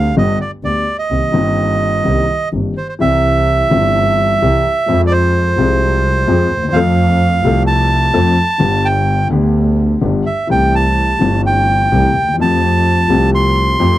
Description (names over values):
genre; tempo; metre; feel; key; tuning
tango; 128 BPM; 4/4; rubato; C minor, C major from 3.0 s; A4 = 443 Hz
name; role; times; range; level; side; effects
bandoneon; melody; 0.0-14.0 s; C5 to C6; -15 LUFS; right 2 dB; none
dark concert grand piano; accompaniment; 0.0-14.0 s; G1 to A4; -16 LUFS; left 4 dB; none
dark double bass; bass; 0.0-14.0 s; G1 to F2; -17 LUFS; right 1 dB; none
room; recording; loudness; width
light reverb; dry, close 1970s-style studio recording; -11 LUFS; side -14 dB against mid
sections
0.0-3.0 A section; 3.0-14.0 B section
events
none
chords
0.2 G; 1.1 Cm7; 3.0 C; 4.9 Fm; 6.7 F; 8.6 G; 10.5 C6; 12.4 Fadd9